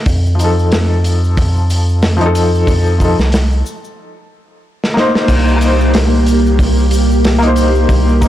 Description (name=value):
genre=trip hop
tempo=92 BPM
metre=4/4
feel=swing 57% on 16ths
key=unclear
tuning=A4 = 440 Hz
part: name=round analog bass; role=bass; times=0.1-8.3 s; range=C2 to F2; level=-13 LUFS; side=equal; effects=none
part: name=crunchy breakbeat drum kit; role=drums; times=0.1-8.3 s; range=crash cymbal, hi-hat, kick drum, snare drum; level=-17 LUFS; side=equal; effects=none
part: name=tube shaker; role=percussion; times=0.1-8.3 s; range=none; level=-38 LUFS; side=left 4 dB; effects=none
part: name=felt-muted upright piano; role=accompaniment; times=0.3-8.3 s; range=F3 to C5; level=-16 LUFS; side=left 2 dB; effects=tremolo, tape echo
part: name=string machine, cellos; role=sustained chords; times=5.3-8.3 s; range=Bb3 to G4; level=-16 LUFS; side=right 1 dB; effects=ensemble chorus
room=studio reverb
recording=blown-out, overdriven recording, overdrive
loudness=-10 LUFS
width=side -12 dB against mid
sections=0.0-5.3 A section; 5.3-8.3 B section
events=break 4.0-5.3; drum fill 4.8-5.3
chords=0.1 F7; 5.3 Cm7